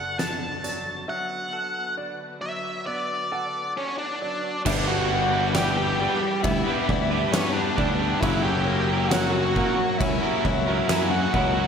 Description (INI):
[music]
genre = post-rock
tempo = 67 BPM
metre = 4/4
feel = straight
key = G lydian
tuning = A4 = 439 Hz
[part]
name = octave-fuzz lead guitar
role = melody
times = 0.0-11.7 s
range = C#4 to A5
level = -26 LUFS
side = right 1 dB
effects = distortion, slapback echo
[part]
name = muted studio string section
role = sustained chords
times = 0.0-11.7 s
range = D3 to C#6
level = -39 LUFS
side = equal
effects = none
[part]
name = clean electric guitar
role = arpeggios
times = 0.0-11.7 s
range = G2 to A4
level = -35 LUFS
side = left 3 dB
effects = slapback echo
[part]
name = felt-muted upright piano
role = arpeggios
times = 0.0-11.7 s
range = C#5 to F#5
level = -38 LUFS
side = right 4 dB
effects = slapback echo
[part]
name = picked electric bass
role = bass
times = 0.0-11.7 s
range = F#1 to G2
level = -28 LUFS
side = equal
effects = none
[part]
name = oversized low-tuned drum kit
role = drums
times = 0.2-11.5 s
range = crash cymbal, hi-hat, kick drum, snare drum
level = -28 LUFS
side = equal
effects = none
[part]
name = overdriven semi-hollow guitar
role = riff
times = 4.7-11.7 s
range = F#3 to B4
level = -29 LUFS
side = right 11 dB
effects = none
[part]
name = thick fuzz guitar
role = riff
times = 4.7-11.7 s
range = F#3 to G4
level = -28 LUFS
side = left 12 dB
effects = distortion
[sound]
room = moderate concert hall reverb, RT60 2.4 s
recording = big arena sound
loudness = -22 LUFS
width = side -7 dB against mid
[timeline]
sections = 0.0-4.7 A section; 4.7-11.7 B section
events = none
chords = 0.0 Bm7/F#; 4.7 G6; 8.2 F#7